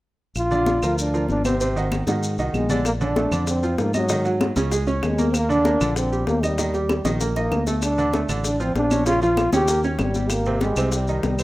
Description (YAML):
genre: latin, salsa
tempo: 193 BPM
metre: 4/4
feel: straight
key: Bb major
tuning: A4 = 436 Hz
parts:
  - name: breathy trombone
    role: melody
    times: 0.4-11.4 s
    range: Gb3 to G4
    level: -23 LUFS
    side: equal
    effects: none
  - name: fingered electric bass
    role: bass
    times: 0.4-11.4 s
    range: Ab1 to Ab2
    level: -25 LUFS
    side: equal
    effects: none
  - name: claves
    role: percussion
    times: 0.4-11.4 s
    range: none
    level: -36 LUFS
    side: right 4 dB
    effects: none
  - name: congas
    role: percussion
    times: 0.4-11.4 s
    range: none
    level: -27 LUFS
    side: left 2 dB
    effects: none
  - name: maracas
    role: percussion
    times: 0.4-11.4 s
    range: none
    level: -34 LUFS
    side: left 3 dB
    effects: none
  - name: bright baby grand piano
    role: accompaniment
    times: 0.5-11.4 s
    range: C3 to Eb5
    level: -25 LUFS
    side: right 3 dB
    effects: none
  - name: bongos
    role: percussion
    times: 2.9-11.4 s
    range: none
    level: -32 LUFS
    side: left 4 dB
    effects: none
room: light reverb, studio ambience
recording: rough home demo mix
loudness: -19 LUFS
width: side -17 dB against mid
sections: 0.4-2.9 A section; 2.9-11.4 B section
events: drum fill 7.0-7.8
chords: 0.4 Bb; 1.6 Ab7; 2.9 Bbmaj7; 4.1 Ab5; 4.7 Dbsus2; 5.3 Ebmaj7; 6.6 Eb; 7.8 Dm; 9.1 Bbm; 9.7 Eb7; 10.3 Abmaj7